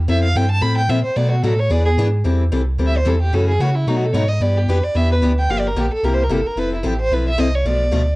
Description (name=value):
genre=acoustic string swing (jazz manouche)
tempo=222 BPM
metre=4/4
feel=swing 56% on 8ths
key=A minor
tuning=A4 = 440 Hz
part: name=pure sine sub bass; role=bass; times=0.0-8.2 s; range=F1 to C#3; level=-18 LUFS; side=equal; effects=none
part: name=warm violin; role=melody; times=0.1-8.2 s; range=D#4 to B5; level=-21 LUFS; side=right 1 dB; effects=cassette tape
part: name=picked steel-string acoustic guitar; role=accompaniment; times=0.1-8.0 s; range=B2 to A4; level=-22 LUFS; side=left 3 dB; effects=cassette tape
room=small room ambience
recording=home recording on cassette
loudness=-15 LUFS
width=side -20 dB against mid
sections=0.0-2.2 A section; 2.2-8.2 A section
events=violin solo 0.0-2.2, 2.2-8.2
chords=0.1 Fmaj9; 1.2 Bm7; 1.7 E7; 2.2 Am7; 3.3 F#m7; 3.9 B7; 4.4 Em7; 5.5 Gm7; 6.0 C7; 6.6 Fmaj7; 7.7 Bm7b5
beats=| 0.09 0.36 0.63 0.90 | 1.17 1.44 1.71 1.98 | 2.25 2.52 2.79 3.06 | 3.33 3.60 3.87 4.14 | 4.41 4.68 4.95 5.22 | 5.49 5.76 6.03 6.30 | 6.57 6.84 7.11 7.38 | 7.65 7.92